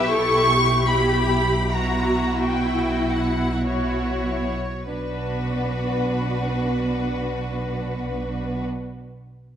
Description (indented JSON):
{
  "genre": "classical, slow romantic movement for string orchestra",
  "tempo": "47-78 BPM",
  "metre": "3/4",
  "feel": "rubato",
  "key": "B minor",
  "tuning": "A4 = 441 Hz",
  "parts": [
    { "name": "warm symphonic violin section", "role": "melody", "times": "0.0-8.6 s", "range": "B4 to C#6", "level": "-26 LUFS", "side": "left 1 dB", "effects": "none" },
    { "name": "rich symphonic violin section", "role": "second line", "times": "0.0-8.7 s", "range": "E4 to B4", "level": "-28 LUFS", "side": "left 2 dB", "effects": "none" },
    { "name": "rich studio viola section", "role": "accompaniment", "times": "0.0-8.6 s", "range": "D4 to A4", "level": "-28 LUFS", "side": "equal", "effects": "none" },
    { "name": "rich symphonic cello section", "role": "bass", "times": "0.0-8.6 s", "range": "B2", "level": "-27 LUFS", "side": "right 2 dB", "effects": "none" },
    { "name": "rich symphonic double bass section", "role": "bass", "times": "0.0-8.6 s", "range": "B1", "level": "-28 LUFS", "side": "right 2 dB", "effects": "none" }
  ],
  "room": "wet recital hall reverb, RT60 1.5 s",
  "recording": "none",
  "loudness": "-20 LUFS",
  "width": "side -9 dB against mid",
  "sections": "0.0-4.9 A section; 4.9-9.6 B section",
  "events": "slowing down 0.0-4.9",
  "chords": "0.0 Em/B; 1.7 F#5/B; 4.9 Bm"
}